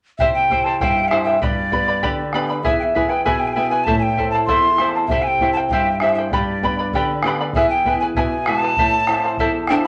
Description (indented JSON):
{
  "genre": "andean folk, Andean ensemble",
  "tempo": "98 BPM",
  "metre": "2/4",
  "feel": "straight",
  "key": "A minor",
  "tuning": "A4 = 441 Hz",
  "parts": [
    { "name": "hollow quena", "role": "melody", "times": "0.2-9.9 s", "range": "D5 to C6", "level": "-21 LUFS", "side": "equal", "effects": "none" },
    { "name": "charango", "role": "accompaniment", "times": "0.2-9.9 s", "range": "E4 to B5", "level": "-24 LUFS", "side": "equal", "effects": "none" },
    { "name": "flamenco guitar", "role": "accompaniment", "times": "0.2-9.9 s", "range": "E2 to A4", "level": "-26 LUFS", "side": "equal", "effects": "none" },
    { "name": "bombo", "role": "percussion", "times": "0.2-9.8 s", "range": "none", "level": "-28 LUFS", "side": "equal", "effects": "none" },
    { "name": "breathy mellow large pan pipes", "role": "second line", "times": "9.7-9.8 s", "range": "D4", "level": "-21 LUFS", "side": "equal", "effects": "none" }
  ],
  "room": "wet studio ambience, RT60 0.5 s",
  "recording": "none",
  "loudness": "-18 LUFS",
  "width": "mono",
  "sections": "0.2-9.9 A section",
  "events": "none",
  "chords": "0.2 C; 1.4 G; 2.6 E; 3.9 Am; 5.1 C; 6.3 G; 7.6 E; 8.8 Am",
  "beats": "| 0.19 0.80 | 1.42 2.03 | 2.64 3.25 | 3.87 4.48 | 5.10 5.71 | 6.32 6.94 | 7.55 8.16 | 8.78 9.39"
}